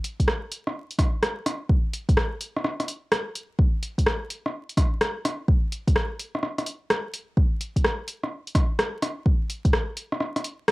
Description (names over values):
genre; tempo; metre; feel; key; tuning
future garage; 127 BPM; 4/4; swing 66% on 16ths; none; none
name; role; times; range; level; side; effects
deep house drum kit; drums; 0.0-10.7 s; hi-hat, rim click; -26 LUFS; equal; none
electronic kick drum; drums; 0.2-9.7 s; none; -21 LUFS; equal; none
room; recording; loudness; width
light reverb; home recording on cassette, vinyl crackle; -23 LUFS; side -21 dB against mid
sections
0.0-10.7 A section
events
none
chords
none